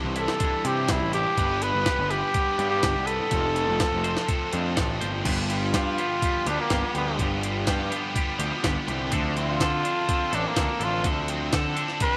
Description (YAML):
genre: indie rock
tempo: 124 BPM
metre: 4/4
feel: straight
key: G mixolydian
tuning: A4 = 441 Hz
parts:
  - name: clean electric guitar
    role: riff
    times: 0.0-12.2 s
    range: G2 to C5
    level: -34 LUFS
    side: equal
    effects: none
  - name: high-gain distorted guitar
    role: riff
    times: 0.0-12.2 s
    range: G2 to C5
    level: -33 LUFS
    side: equal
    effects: distortion, analog chorus, slapback echo
  - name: fuzz picked electric bass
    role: bass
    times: 0.0-11.8 s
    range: F1 to D3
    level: -32 LUFS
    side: equal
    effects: overdrive
  - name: growling trumpet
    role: melody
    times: 0.2-12.2 s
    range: Bb3 to B4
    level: -29 LUFS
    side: equal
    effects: slapback echo
  - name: jungle sampler-style drum kit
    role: drums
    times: 0.2-12.1 s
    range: crash cymbal, hi-hat, kick drum, snare drum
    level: -30 LUFS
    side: equal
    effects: none
room: little or no reverb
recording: none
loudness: -25 LUFS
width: mono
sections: 0.0-5.3 A section; 5.3-12.2 B section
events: trumpet solo 5.3-12.2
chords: 0.0 Cadd9; 1.4 G; 3.3 F6; 5.3 G7; 9.1 Dm7